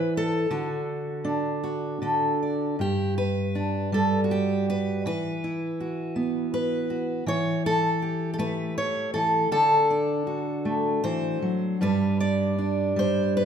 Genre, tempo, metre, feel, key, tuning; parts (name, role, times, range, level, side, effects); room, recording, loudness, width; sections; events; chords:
folk, solo fingerstyle acoustic guitar; 80 BPM; 3/4; rubato; G major; A4 = 441 Hz
fingerpicked steel-string acoustic guitar; solo; 0.0-13.4 s; G2 to D5; -23 LUFS; equal
wet recital hall reverb, RT60 1.4 s; minimal, uncompressed stereo recording; -23 LUFS; side -8 dB against mid
0.0-2.8 A section; 2.8-13.4 B section
0.0 N.C.; 0.5 D; 2.8 G; 5.1 Esus2; 7.3 A5/E; 9.5 D; 11.8 G